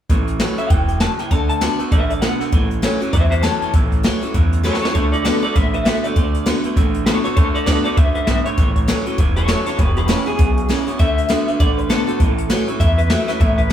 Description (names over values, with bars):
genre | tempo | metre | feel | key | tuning
rockabilly | 198 BPM | 4/4 | swing 60% on 8ths | A major | A4 = 440 Hz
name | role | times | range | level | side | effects
picked steel-string acoustic guitar | accompaniment | 0.1-13.7 s | E2 to F#4 | -24 LUFS | left 3 dB | none
electric guitar through a small old amp | riff | 0.1-13.7 s | E2 to B3 | -24 LUFS | right 4 dB | spring reverb
upright bass | bass | 0.1-13.7 s | E1 to E2 | -20 LUFS | equal | none
jazz brush drum kit | drums | 0.1-13.7 s | hi-hat, kick drum, snare drum | -18 LUFS | equal | none
electric guitar through a small old amp | melody | 0.6-13.7 s | G4 to A5 | -22 LUFS | left 1 dB | tremolo
room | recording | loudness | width
light reverb | band playing live in one room | -15 LUFS | side -10 dB against mid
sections
0.1-13.7 A section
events
drum fill 4.6-4.9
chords
0.1 A6; 1.3 D6; 2.5 A6; 4.9 D6; 8.6 A6; 9.8 E6; 11.0 D6; 12.2 A6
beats
| 0.10 0.40 0.70 1.01 | 1.31 1.61 1.92 2.22 | 2.52 2.83 3.13 3.43 | 3.74 4.04 4.34 4.65 | 4.95 5.25 5.55 5.86 | 6.16 6.46 6.76 7.07 | 7.37 7.67 7.97 8.28 | 8.58 8.88 9.18 9.48 | 9.79 10.09 10.39 10.69 | 10.99 11.29 11.60 11.90 | 12.20 12.50 12.80 13.10 | 13.40 13.70